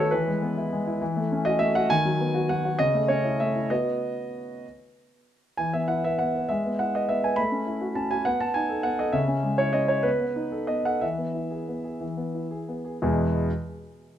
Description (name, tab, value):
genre	classical-period piano sonatina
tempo	59-69 BPM (dotted quarters)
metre	6/8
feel	rubato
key	E major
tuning	A4 = 440 Hz
part	warm grand piano	solo	0.0-13.5 s	E2 to B5	-23 LUFS	equal	none
room	moderate recital hall reverb, RT60 1.7 s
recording	close, detailed microphones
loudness	-23 LUFS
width	side -10 dB against mid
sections	0.0-13.0 A section; 13.0-14.2 B section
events	slowing down 8.3-13.0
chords	0.1 E; 1.0 F#m7/E; 1.9 B/D#; 2.8 A/C#; 3.7 B; 5.6 E5; 6.5 E/G#; 7.4 F#m7/A; 8.3 B7; 9.2 C#m; 10.1 B7; 11.0 E